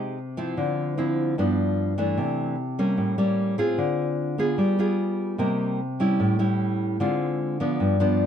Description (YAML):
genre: bossa nova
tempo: 150 BPM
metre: 4/4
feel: straight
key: unclear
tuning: A4 = 438 Hz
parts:
  - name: nylon-string guitar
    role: solo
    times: 0.0-8.3 s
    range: G2 to Ab4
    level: -22 LUFS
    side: equal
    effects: none
room: light reverb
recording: dark, warm production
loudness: -22 LUFS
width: side -8 dB against mid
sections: 0.0-8.3 A section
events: none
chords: 0.0 Fm9; 0.6 Dm9; 1.4 G7; 2.2 C69; 3.0 A7b9; 3.8 Dm7b5; 4.6 G7b9; 5.4 Cm7; 6.2 A7; 7.0 Dm7b5